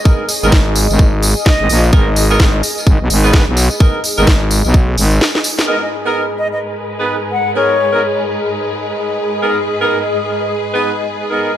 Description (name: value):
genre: bass house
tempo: 128 BPM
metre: 4/4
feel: swing 60% on 16ths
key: G# minor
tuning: A4 = 440 Hz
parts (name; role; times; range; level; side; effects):
- granular cloud pad; texture; 0.0-11.6 s; G#4 to D#5; -21 LUFS; equal; built-in reverb, sidechain pumping
- clear horn section; stabs; 0.1-11.5 s; B3 to B4; -19 LUFS; right 2 dB; sidechain pumping, dub echo
- electronic kick drum; drums; 0.1-4.9 s; none; -11 LUFS; equal; none
- tambourine; percussion; 0.1-5.7 s; none; -22 LUFS; left 1 dB; none
- garage drum kit; drums; 0.3-5.7 s; hi-hat, snare drum; -18 LUFS; equal; low-pass filter on hats, low-pass filter on snare, low-pass filter on room
- growling FM bass; bass; 0.4-5.2 s; G#1 to B1; -13 LUFS; equal; overdrive, sidechain pumping
- silver concert flute; melody; 1.5-1.8, 5.7-8.2 s; C#5 to F#5; -20 LUFS; left 2 dB; dub echo
- bright studio string section; sustained chords; 5.7-11.6 s; G#2 to B4; -24 LUFS; left 1 dB; sidechain pumping, low-pass filter
room: light reverb, small room ambience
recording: none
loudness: -11 LUFS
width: side -11 dB against mid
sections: 0.0-5.7 A section; 5.7-11.6 B section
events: break 5.2-5.7; drum fill 5.3-5.7; band accent 5.6; filter sweep on string section 5.7-11.6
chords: 0.0 G#madd9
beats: | 0.05 0.52 0.99 1.46 | 1.93 2.40 2.87 3.33 | 3.80 4.27 4.74 5.21 | 5.68 6.15 6.62 7.08 | 7.55 8.02 8.49 8.96 | 9.43 9.90 10.37 10.84 | 11.30